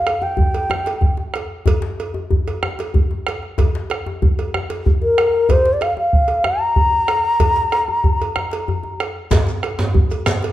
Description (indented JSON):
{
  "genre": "west african traditional, West African drum ensemble",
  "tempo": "126 BPM (dotted quarters)",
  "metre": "12/8",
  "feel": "straight",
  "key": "Bb major pentatonic",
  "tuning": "A4 = 440 Hz",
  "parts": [
    { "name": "mellow bansuri", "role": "melody", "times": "0.0-1.2, 5.0-9.0 s", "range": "Bb4 to Bb5", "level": "-17 LUFS", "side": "left 1 dB", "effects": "none" },
    { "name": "bombo", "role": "percussion", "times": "0.1-10.4 s", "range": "none", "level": "-19 LUFS", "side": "right 1 dB", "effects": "none" },
    { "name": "cowbell", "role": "percussion", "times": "0.1-10.5 s", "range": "none", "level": "-28 LUFS", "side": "right 4 dB", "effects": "none" },
    { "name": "djembe", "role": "percussion", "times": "0.2-10.5 s", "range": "none", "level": "-24 LUFS", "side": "left 3 dB", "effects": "none" },
    { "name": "djembe", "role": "percussion", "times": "9.3-10.4 s", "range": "none", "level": "-21 LUFS", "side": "right 2 dB", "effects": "none" },
    { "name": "shekere", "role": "percussion", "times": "9.3-10.4 s", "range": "none", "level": "-27 LUFS", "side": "left 3 dB", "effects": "none" }
  ],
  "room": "wet recital hall reverb, RT60 1.3 s",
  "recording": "dark, warm production",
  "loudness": "-16 LUFS",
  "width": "side -14 dB against mid",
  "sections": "0.0-9.3 A section; 9.3-10.5 B section",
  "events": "none",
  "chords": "none"
}